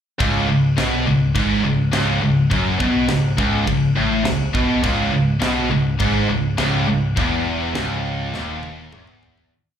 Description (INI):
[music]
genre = heavy metal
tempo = 103 BPM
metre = 4/4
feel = straight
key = C# minor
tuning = A4 = 440 Hz
[part]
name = distorted electric guitar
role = riff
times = 0.2-9.5 s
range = C#2 to B2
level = -22 LUFS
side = right 5 dB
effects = distortion, slapback echo
[part]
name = heavy high-gain guitar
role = riff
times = 0.2-9.5 s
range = C#2 to B2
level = -22 LUFS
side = left 7 dB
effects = distortion, slapback echo
[part]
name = tight distorted guitar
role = riff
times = 0.2-9.5 s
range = C#2 to B2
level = -24 LUFS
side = equal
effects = distortion, slapback echo
[part]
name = overdriven picked electric bass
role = bass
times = 0.2-9.5 s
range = C#1 to B1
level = -25 LUFS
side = equal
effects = none
[part]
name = tight metal drum kit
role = drums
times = 0.2-9.5 s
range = crash cymbal, kick drum, snare drum, toms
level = -26 LUFS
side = equal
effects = none
[sound]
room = light reverb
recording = live gig heard through the venue's PA, club reverb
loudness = -16 LUFS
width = side -8 dB against mid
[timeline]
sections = 0.2-9.5 riff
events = fade-out 7.2-9.5; drum fill 8.3-9.5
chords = 0.2 C#m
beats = | 0.20 0.78 1.35 1.93 | 2.51 3.09 3.67 4.25 | 4.83 5.42 6.00 6.59 | 7.17 7.76 8.35 8.94